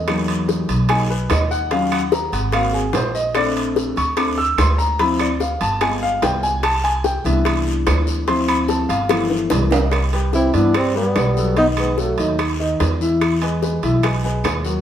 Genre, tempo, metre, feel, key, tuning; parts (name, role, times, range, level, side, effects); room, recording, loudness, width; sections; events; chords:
Afro-Cuban jazz; 146 BPM; 4/4; straight; A4 = 441 Hz
warm grand piano; accompaniment; 0.0-14.8 s; D#3 to E6; -20 LUFS; left 2 dB
upright bass; bass; 0.0-14.8 s; G1 to G2; -21 LUFS; right 1 dB
bongos; percussion; 0.1-14.8 s; -24 LUFS; left 5 dB
claves; percussion; 0.1-14.6 s; -32 LUFS; right 3 dB
guiro; percussion; 0.1-14.8 s; -34 LUFS; left 3 dB
timbales; percussion; 0.1-14.7 s; -26 LUFS; right 5 dB
breathy tenor saxophone; melody; 10.3-12.4 s; A3 to E4; -20 LUFS; right 1 dB
mellow trombone; second line; 10.3-12.4 s; F#3 to C4; -23 LUFS; left 1 dB
moderate stone room reverb, RT60 1.1 s; band playing live in one room; -16 LUFS; side -10 dB against mid
0.0-9.9 A section; 9.9-14.8 B section
grand piano solo 0.0-9.9; drum fill 9.1-9.9
0.1 Emaj9#11; 1.7 Ebm7; 2.5 Ab9; 3.4 Bbmaj9; 5.0 Dm9; 5.8 G7b9; 6.6 Cmaj9; 8.3 Dm7; 9.1 G13; 9.9 Cmaj7; 11.6 B7; 13.2 Emaj9